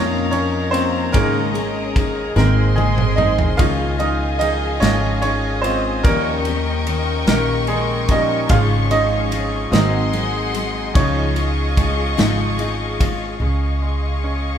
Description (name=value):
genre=six-eight pop ballad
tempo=49 BPM (dotted quarters)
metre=6/8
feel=straight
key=Db major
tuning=A4 = 442 Hz
part: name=bright grand piano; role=accompaniment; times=0.0-14.6 s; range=Db3 to F5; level=-22 LUFS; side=right 2 dB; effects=none
part: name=warm studio string section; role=sustained chords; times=0.0-14.6 s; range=Ab4 to Db6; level=-26 LUFS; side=left 3 dB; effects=none
part: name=picked steel-string acoustic guitar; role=arpeggios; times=0.0-13.4 s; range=Ab2 to Ab4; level=-24 LUFS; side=left 5 dB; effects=none
part: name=upright bass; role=bass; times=0.0-14.6 s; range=Ab1 to F2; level=-21 LUFS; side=right 1 dB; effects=none
part: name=natural country drum kit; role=drums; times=0.3-13.2 s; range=kick drum, ride cymbal, snare drum, toms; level=-20 LUFS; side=equal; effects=none
room=light reverb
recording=band playing live in one room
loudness=-16 LUFS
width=side -9 dB against mid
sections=0.0-13.4 A section; 13.4-14.6 B section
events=grand piano solo 0.0-13.4; drum fill 2.4-3.6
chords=0.0 Bbm; 1.1 Absus4; 2.4 Ab; 3.6 Dbadd9; 6.0 Eb7; 8.5 Db/Ab; 9.7 Ab7; 11.0 Dbadd9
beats=| 1.14 2.37 | 3.60 4.82 | 6.05 7.28 | 8.50 9.73 | 10.96 12.19 | 13.41